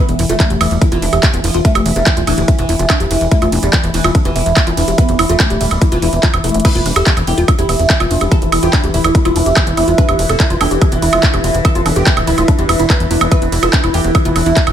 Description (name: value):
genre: psychedelic trance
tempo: 144 BPM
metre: 4/4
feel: straight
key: E phrygian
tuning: A4 = 440 Hz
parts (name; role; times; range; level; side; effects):
- oud; melody; 0.0-14.4 s; E3 to B4; -19 LUFS; right 2 dB; phaser, sidechain pumping, ping-pong delay
- overtone-sweeping drone; sustained chords; 0.0-14.7 s; E3; -23 LUFS; left 2 dB; chorus, built-in reverb, sidechain pumping
- woody wave-folded pluck; riff; 0.0-14.6 s; D4 to E5; -20 LUFS; moving between left 4 dB and right 4 dB; chorus, auto-pan, sidechain pumping, dub echo
- plucky analog bass; bass; 0.1-14.7 s; D1 to F1; -17 LUFS; equal; none
- big-room dance drum kit; drums; 0.1-14.7 s; crash cymbal, handclaps, hi-hat, ride cymbal, woodblock; -18 LUFS; right 3 dB; overdrive, studio reverb
- electronic kick drum; drums; 0.4-14.6 s; none; -14 LUFS; equal; overdrive, studio reverb
- ethereal airy pad; texture; 7.8-14.7 s; E4 to E5; -23 LUFS; right 1 dB; ensemble chorus, built-in reverb, sidechain pumping
room: little or no reverb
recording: none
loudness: -10 LUFS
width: side -10 dB against mid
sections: 0.0-6.6 A section; 6.6-14.7 A section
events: drop 0.0-6.6, 6.6-14.7; drum fill 6.4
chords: 0.0 E5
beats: 0.40 0.81 1.23 | 1.65 2.06 2.48 2.90 | 3.31 3.73 4.15 4.57 | 4.98 5.40 5.82 6.23 | 6.65 7.07 7.48 7.90 | 8.31 8.73 9.15 9.56 | 9.98 10.40 10.81 11.23 | 11.65 12.06 12.48 12.90 | 13.31 13.73 14.15 14.56